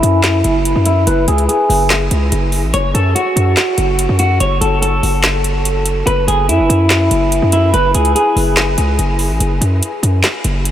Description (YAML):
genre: hip hop, trap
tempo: 144 BPM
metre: 4/4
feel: half-time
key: unclear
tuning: A4 = 440 Hz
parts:
  - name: clean electric guitar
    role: melody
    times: 0.0-9.4 s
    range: E4 to C#5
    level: -15 LUFS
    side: equal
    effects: wide subtle chorus, low-pass filter, diffuse ambient delay
  - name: distorted 808-style bass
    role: bass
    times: 0.0-10.7 s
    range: F#1 to F#2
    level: -15 LUFS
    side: equal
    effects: distortion
  - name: trap drum kit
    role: drums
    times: 0.0-10.7 s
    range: handclaps, hi-hat, snare drum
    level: -19 LUFS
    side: equal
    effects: overdrive
room: wet huge ambient reverb, RT60 8.0 s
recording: dreamy mix soaked in reverb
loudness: -11 LUFS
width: side -11 dB against mid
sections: 0.0-10.7 A section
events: filter sweep on clean electric guitar 0.0-2.7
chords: 0.0 E6/F#; 2.7 F#m; 6.1 E/F#; 9.4 N.C.